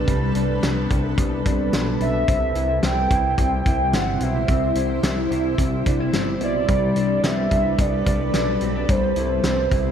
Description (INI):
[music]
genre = dream pop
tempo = 109 BPM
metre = 4/4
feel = straight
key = C major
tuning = A4 = 440 Hz
[part]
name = granular cloud pad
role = sustained chords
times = 0.0-9.9 s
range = C3 to C5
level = -26 LUFS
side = right 1 dB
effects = built-in reverb
[part]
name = mellow electric guitar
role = arpeggios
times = 0.0-9.9 s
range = G3 to E4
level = -26 LUFS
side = left 3 dB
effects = wide subtle chorus, ping-pong delay
[part]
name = fat analog bass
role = bass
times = 0.0-9.9 s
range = G1 to C2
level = -25 LUFS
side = equal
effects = none
[part]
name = loose indie drum kit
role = drums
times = 0.1-9.8 s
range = hi-hat, kick drum, snare drum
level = -23 LUFS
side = equal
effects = none
[part]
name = warbly nostalgic lead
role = melody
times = 2.0-9.9 s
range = C5 to G5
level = -24 LUFS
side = right 2 dB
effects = chorus, tremolo, ping-pong delay
[sound]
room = moderate plate reverb, RT60 1.7 s, small room ambience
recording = dreamy mix soaked in reverb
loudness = -18 LUFS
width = side -8 dB against mid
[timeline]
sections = 0.0-9.9 A section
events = none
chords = 0.0 Gadd9; 2.3 C; 6.7 Gadd9/C; 8.9 C